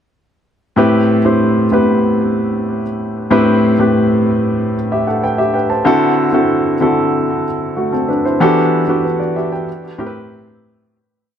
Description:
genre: soul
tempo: 94 BPM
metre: 4/4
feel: straight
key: A dorian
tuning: A4 = 440 Hz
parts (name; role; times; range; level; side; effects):
- warm grand piano; solo; 0.8-11.0 s; A2 to A5; -12 LUFS; equal; tape echo
room: moderate echo chamber reverb, RT60 1.8 s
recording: none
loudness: -12 LUFS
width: side -8 dB against mid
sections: 0.8-10.9 A section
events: fade-out 8.4-10.9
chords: 0.8 Am7; 5.9 D7; 8.4 Em11; 9.7 Am7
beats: | 0.78 1.41 2.05 2.68 | 3.32 3.95 4.59 5.22 | 5.86 6.50 7.13 7.77 | 8.40 9.04 9.67 10.30

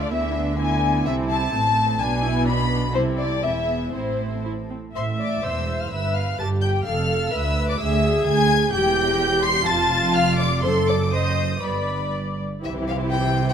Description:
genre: quick classical-period movement for string orchestra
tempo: 116-131 BPM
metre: 2/4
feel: rubato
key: A minor, C major from 8.7 s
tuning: A4 = 438 Hz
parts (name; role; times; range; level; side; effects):
- warm chamber violin section; melody; 0.0-13.5 s; G#4 to C7; -28 LUFS; left 2 dB; none
- warm chamber violin section; second line; 0.0-13.5 s; G4 to C6; -25 LUFS; left 4 dB; none
- warm studio viola section; accompaniment; 0.0-13.5 s; E3 to E5; -26 LUFS; equal; none
- warm chamber cello section; bass; 0.0-13.5 s; D2 to D3; -26 LUFS; right 3 dB; none
- warm studio double bass section; bass; 0.0-13.5 s; E1 to D2; -27 LUFS; right 3 dB; none
room: moderate scoring stage reverb, RT60 1.8 s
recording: none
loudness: -19 LUFS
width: side -8 dB against mid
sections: 0.0-5.0 A section; 5.0-12.6 A section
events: none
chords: 0.1 E7/D; 1.1 Am/C; 2.0 G#dim/B; 2.9 Am/C; 3.4 E; 3.9 Am; 5.9 G13; 6.9 F; 7.3 Bmadd11/D; 8.7 Em; 9.7 F6; 10.6 F#dim7; 11.6 G; 12.6 C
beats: | 0.12 0.58 | 1.06 1.54 | 2.00 2.47 | 2.94 3.43 | 3.94 4.45 | 4.96 5.44 | 5.92 6.40 | 6.87 7.33 | 7.80 8.26 | 8.73 9.20 | 9.67 10.15 | 10.64 11.13 | 11.63 12.14 | 12.64 13.13

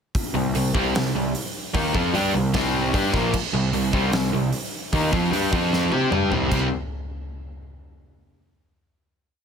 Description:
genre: hard rock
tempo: 151 BPM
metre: 4/4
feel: straight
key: C minor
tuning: A4 = 439 Hz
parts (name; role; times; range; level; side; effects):
- huge arena drum kit; drums; 0.1-6.6 s; crash cymbal, hi-hat, kick drum, snare drum, toms; -26 LUFS; equal; none
- overdriven semi-hollow guitar; riff; 0.3-6.7 s; Bb2 to C5; -24 LUFS; left 10 dB; none
- sludgy distorted guitar; riff; 0.3-6.7 s; Bb2 to C5; -24 LUFS; right 12 dB; overdrive
- fuzz picked electric bass; bass; 0.3-6.7 s; Bb1 to C3; -27 LUFS; equal; overdrive
room: light reverb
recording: none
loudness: -20 LUFS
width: side -6 dB against mid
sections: 0.1-6.5 riff; 6.5-8.1 final chord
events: drum fill 5.7-6.5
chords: 0.1 Cm; 5.5 F5; 5.9 C5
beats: | 0.14 0.54 0.94 1.34 | 1.74 2.14 2.54 2.94 | 3.34 3.74 4.13 4.53 | 4.93 5.33 5.72 6.12 | 6.51

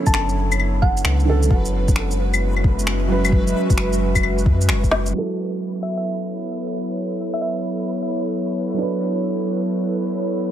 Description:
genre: future garage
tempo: 132 BPM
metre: 4/4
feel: swing 66% on 16ths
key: F# minor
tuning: A4 = 440 Hz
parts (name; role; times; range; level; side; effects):
- felt-muted upright piano; accompaniment; 0.0-10.5 s; D3 to B4; -26 LUFS; right 4 dB; sidechain pumping, dub echo
- airy breathy pad; sustained chords; 0.0-10.5 s; F#3 to E5; -25 LUFS; equal; chorus, sidechain pumping
- backwards swelling texture; texture; 0.0-10.5 s; B4; -33 LUFS; right 2 dB; built-in reverb
- thumb-piano-like synth pluck; melody; 0.1-1.2, 5.8-7.5 s; E5 to A5; -30 LUFS; equal; chorus, cassette tape, dub echo
- warm sub bass; bass; 0.1-5.1 s; F#1 to F#2; -21 LUFS; equal; sidechain pumping
- electronic kick drum; drums; 0.1-4.9 s; none; -18 LUFS; equal; overdrive, studio reverb
- electronic shaker, finger snaps, claves and snare drum; drums; 0.1-10.1 s; none; -24 LUFS; left 2 dB; overdrive, studio reverb
room: light reverb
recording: low-pass filter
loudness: -18 LUFS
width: side -11 dB against mid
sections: 0.0-5.1 A section; 5.1-10.5 B section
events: drum fill 4.9; filter sweep 5.1-10.5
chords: 0.0 Bm9/F#; 1.5 C#7sus4/F#; 5.1 F#m7; 8.8 Bm9/F#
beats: 0.14 0.60 1.05 | 1.51 1.96 2.42 2.87 | 3.32 3.78 4.23 4.69 | 5.14 5.60 6.05 6.51 | 6.96 7.42 7.87 8.32 | 8.78 9.23 9.69 10.14

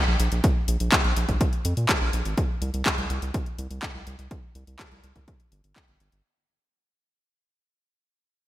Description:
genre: italo disco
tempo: 124 BPM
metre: 4/4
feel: straight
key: unclear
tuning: A4 = 442 Hz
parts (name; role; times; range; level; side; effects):
- round analog bass; bass; 0.1-6.2 s; G1 to Bb2; -27 LUFS; equal; none
- house drum kit; drums; 0.2-6.2 s; handclaps, hi-hat; -26 LUFS; left 1 dB; overdrive, studio reverb
- electronic kick drum; drums; 0.4-5.9 s; none; -25 LUFS; equal; studio reverb
room: light reverb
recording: bright 1980s-style digital production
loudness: -22 LUFS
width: side -14 dB against mid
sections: 0.0-6.2 A section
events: fade-out 0.0-6.2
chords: none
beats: | 0.44 0.92 1.41 1.89 | 2.37 2.86 3.34 3.83 | 4.31 4.79 5.28 5.76

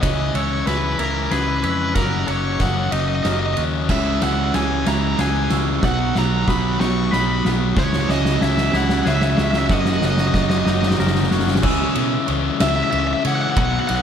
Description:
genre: post-rock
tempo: 62 BPM (dotted quarters)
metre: 6/8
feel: straight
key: C# dorian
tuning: A4 = 440 Hz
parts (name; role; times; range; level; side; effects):
- overdriven electric guitar; melody; 0.0-14.0 s; A#4 to C#6; -24 LUFS; right 2 dB; digital delay
- pedal steel guitar; sustained chords; 0.0-14.0 s; D#4 to G#5; -35 LUFS; right 1 dB; none
- glockenspiel with soft plastic mallets; arpeggios; 0.0-14.0 s; C#6 to E7; -31 LUFS; right 6 dB; digital delay
- twangy electric guitar; arpeggios; 0.0-11.6 s; B2 to B4; -31 LUFS; left 2 dB; digital delay
- thick fuzz guitar; riff; 0.0-14.0 s; F#2 to D#4; -24 LUFS; left 10 dB; distortion
- fingered electric bass; bass; 0.0-14.0 s; F#1 to C#3; -24 LUFS; equal; none
- oversized low-tuned drum kit; drums; 0.0-14.0 s; crash cymbal, kick drum, ride cymbal, snare drum; -23 LUFS; equal; none
- thick fuzz guitar; riff; 3.9-12.1 s; F#2 to C#4; -24 LUFS; right 10 dB; distortion
room: light reverb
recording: none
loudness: -17 LUFS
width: side -8 dB against mid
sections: 0.0-11.6 A section; 11.6-14.0 B section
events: build-up 0.0-11.6; drum fill 0.0-11.6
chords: 0.0 C#m; 2.0 F#6; 3.9 C#m; 5.8 B; 7.8 C#m; 9.7 F#6; 11.6 C#m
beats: | 0.03 1.00 | 1.97 2.93 | 3.90 4.87 | 5.83 6.80 | 7.77 8.74 | 9.70 10.67 | 11.64 12.60 | 13.57

